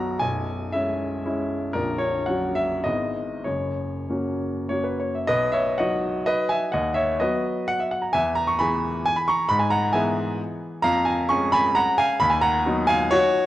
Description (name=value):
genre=classical, romantic triple-time dance for piano with dotted rhythms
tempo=94-144 BPM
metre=3/4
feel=rubato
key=B major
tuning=A4 = 440 Hz
part: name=clear baby grand piano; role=solo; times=0.0-13.5 s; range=A#0 to C#6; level=-21 LUFS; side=equal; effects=none
room=moderate scoring stage reverb, RT60 1.6 s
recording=worn, warbling old tape, cassette tape, warbly pitch drift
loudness=-21 LUFS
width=side -14 dB against mid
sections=0.0-5.3 A section; 5.3-13.5 B section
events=none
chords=0.2 C#m7/B; 1.7 F#/A#; 2.9 E/G#; 3.5 F#; 5.3 B; 6.7 B/D#; 8.1 E; 9.5 E/G#; 10.8 C#/E#; 12.2 B/D#